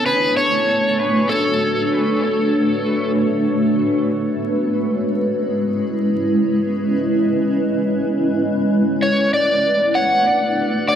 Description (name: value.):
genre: ambient.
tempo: free time.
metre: none.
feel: none.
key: B dorian.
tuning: A4 = 440 Hz.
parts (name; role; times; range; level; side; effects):
overdriven slide guitar; melody; 0.0-3.1, 9.0-11.0 s; A4 to F#5; -18 LUFS; equal; dub echo.
granular cloud pad; sustained chords; 0.0-11.0 s; G#3 to G#5; -18 LUFS; equal; built-in reverb.
room: wet spring reverb, RT60 1.9 s, digital ambience.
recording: vinyl crackle.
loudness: -16 LUFS.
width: side -9 dB against mid.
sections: 0.0-11.0 A section.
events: none.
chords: 0.0 Bm9; 4.1 C#m7; 9.0 Bm7.